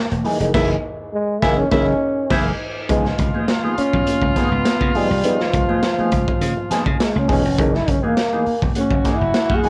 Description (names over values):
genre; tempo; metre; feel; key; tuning
funk; 102 BPM; 4/4; straight; Db mixolydian; A4 = 440 Hz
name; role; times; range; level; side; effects
breathy trombone; melody; 0.0-9.7 s; F3 to Ab4; -23 LUFS; equal; tube saturation, cassette tape
mellow electric guitar; accompaniment; 0.1-9.7 s; Fb3 to Ab4; -26 LUFS; equal; wah, spring reverb
slap bass; bass; 0.1-9.6 s; Fb1 to Db3; -25 LUFS; equal; none
raw garage drum kit; drums; 0.1-9.7 s; crash cymbal, hi-hat, kick drum, snare drum; -24 LUFS; equal; cassette tape
congas; percussion; 0.1-9.7 s; none; -29 LUFS; equal; none
clear baritone saxophone; second line; 0.5-9.7 s; Fb4 to Gb4; -29 LUFS; equal; none
room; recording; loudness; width
light reverb; home recording on cassette; -19 LUFS; mono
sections
0.0-2.9 A section; 2.9-9.7 B section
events
band accent 0.5-2.9; trombone solo 2.9-9.7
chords
0.0 Gb13; 2.9 Db9; 7.6 Gb13